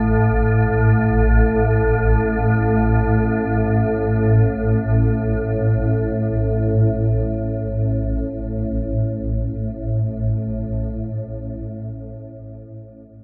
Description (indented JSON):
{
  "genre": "ambient",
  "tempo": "free time",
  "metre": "none",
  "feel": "none",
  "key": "unclear",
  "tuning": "A4 = 439 Hz",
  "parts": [
    { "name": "swarming drone", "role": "solo", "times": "0.0-11.6 s", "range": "A1 to A2", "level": "-20 LUFS", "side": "equal", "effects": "built-in reverb, diffuse ambient delay" }
  ],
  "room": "wet huge ambient reverb, RT60 7.7 s",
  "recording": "none",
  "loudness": "-19 LUFS",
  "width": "mono",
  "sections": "0.0-8.6 A section; 8.6-13.2 B section",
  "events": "none",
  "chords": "none",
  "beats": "free time"
}